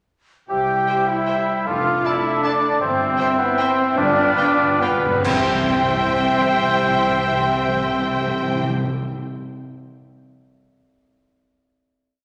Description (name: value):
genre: classical, orchestral ballroom waltz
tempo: 133-169 BPM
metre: 3/4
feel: rubato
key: C major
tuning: A4 = 440 Hz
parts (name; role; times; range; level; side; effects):
- bright clarinet; second line; 0.5-8.6 s; A4 to C5; -32 LUFS; equal; none
- hollow concert flute; second line; 0.5-8.6 s; G5 to A5; -31 LUFS; equal; none
- mellow cor anglais; second line; 0.5-8.6 s; D5 to F5; -28 LUFS; equal; none
- warm bassoon; accompaniment; 0.5-8.6 s; B3 to G4; -27 LUFS; equal; none
- mellow French horn section; sustained chords; 0.5-8.6 s; G3 to G4; -32 LUFS; equal; none
- warm trumpet; stabs; 0.5-8.6 s; B4 to G5; -26 LUFS; equal; none
- rich symphonic cello section; bass; 0.5-8.6 s; B3 to G4; -28 LUFS; equal; none
- rich symphonic double bass section; bass; 0.5-8.6 s; F1 to C2; -32 LUFS; equal; none
- warm symphonic violin section; melody; 0.9-8.6 s; G5 to A5; -30 LUFS; equal; none
- rich symphonic violin section; second line; 0.9-8.6 s; D5 to F5; -36 LUFS; equal; none
- rich symphonic viola section; accompaniment; 0.9-8.6 s; A4 to C5; -34 LUFS; equal; none
- cymbal swell, clash cymbals and concert bass drum; percussion; 2.8-6.1 s; none; -33 LUFS; equal; none
- timpani; percussion; 4.0-8.9 s; G2 to C3; -29 LUFS; equal; none
room: wet scoring stage reverb, RT60 1.9 s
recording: none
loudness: -19 LUFS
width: mono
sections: 0.5-5.2 A section; 5.2-7.9 final chord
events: slowing down 2.3-5.2; timpani fill 4.0-5.2; band accent 5.2-5.7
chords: 0.5 C; 1.7 Dm/F; 2.8 C/G; 4.0 G7; 5.2 C